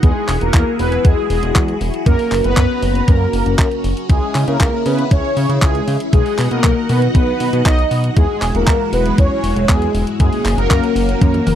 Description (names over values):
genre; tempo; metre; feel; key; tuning
italo disco; 118 BPM; 4/4; straight; unclear; A4 = 440 Hz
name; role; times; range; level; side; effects
mellow synth brass; melody; 0.0-11.6 s; G#3 to D#5; -19 LUFS; equal; chorus, phaser, cassette tape, tape echo
string machine, full ensemble; sustained chords; 0.0-11.6 s; G#3 to A#5; -22 LUFS; left 1 dB; phaser, ensemble chorus, vintage 12-bit sampler grit
chorused synth bass; bass; 0.0-11.6 s; E1 to C#3; -18 LUFS; equal; none
clean 12-bit digital drum machine; drums; 0.0-11.6 s; handclaps, hi-hat, toms; -23 LUFS; left 1 dB; none
electronic kick drum; drums; 0.0-11.3 s; none; -14 LUFS; equal; none
room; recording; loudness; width
little or no reverb; dry, close 1970s-style studio recording; -13 LUFS; side -10 dB against mid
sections
0.0-11.6 A section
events
drum fill 11.2-11.6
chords
0.0 Eadd9; 2.1 F#; 4.1 C#m; 6.1 B; 8.2 Eadd9; 10.2 F#